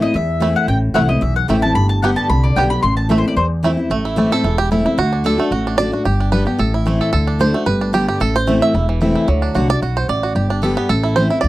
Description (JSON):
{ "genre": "bluegrass", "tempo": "223 BPM", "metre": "4/4", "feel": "straight", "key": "A dorian", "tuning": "A4 = 439 Hz", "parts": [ { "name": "mandolin", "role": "melody", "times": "0.0-3.5 s", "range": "C5 to C6", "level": "-19 LUFS", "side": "left 2 dB", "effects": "none" }, { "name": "picked steel-string acoustic guitar", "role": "accompaniment", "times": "0.0-11.5 s", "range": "E2 to G4", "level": "-18 LUFS", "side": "left 1 dB", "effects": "none" }, { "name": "upright bass", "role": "bass", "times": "0.1-11.5 s", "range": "E1 to E2", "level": "-18 LUFS", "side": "equal", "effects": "none" }, { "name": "bluegrass banjo", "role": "melody", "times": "0.4-11.5 s", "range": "E3 to E5", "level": "-19 LUFS", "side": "right 4 dB", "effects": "none" } ], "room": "little or no reverb", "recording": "dry, close 1970s-style studio recording, faint mains hum", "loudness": "-14 LUFS", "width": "side -16 dB against mid", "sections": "0.0-3.9 A section; 3.9-11.5 B section", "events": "five-string banjo solo 3.9-11.5", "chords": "0.0 Am; 1.8 G; 2.8 Am; 5.0 D; 6.1 G; 6.6 Am; 7.1 D; 7.7 G; 8.2 Am; 9.3 D; 10.4 G; 10.9 Am" }